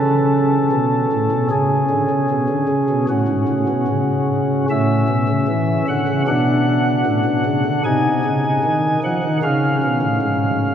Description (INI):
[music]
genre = classical, chorale-style piece for pipe organ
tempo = 76 BPM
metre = 4/4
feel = straight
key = unclear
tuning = A4 = 440 Hz
[part]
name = pipe organ, flutes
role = solo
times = 0.0-10.7 s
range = G#2 to G#5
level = -16 LUFS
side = equal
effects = none
[sound]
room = wet cathedral reverb, RT60 7.0 s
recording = heard from further back in the room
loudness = -16 LUFS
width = side -9 dB against mid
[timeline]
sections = 0.0-10.7 A section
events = none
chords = 0.0 F#m (rootless); 1.5 C#5; 3.1 F#m; 4.7 A; 6.3 Bm7; 7.9 C#maj9/B#; 9.4 C#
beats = 0.73 | 1.51 2.30 3.09 3.88 | 4.70 5.49 6.28 7.06 | 7.86 8.65 9.43 10.21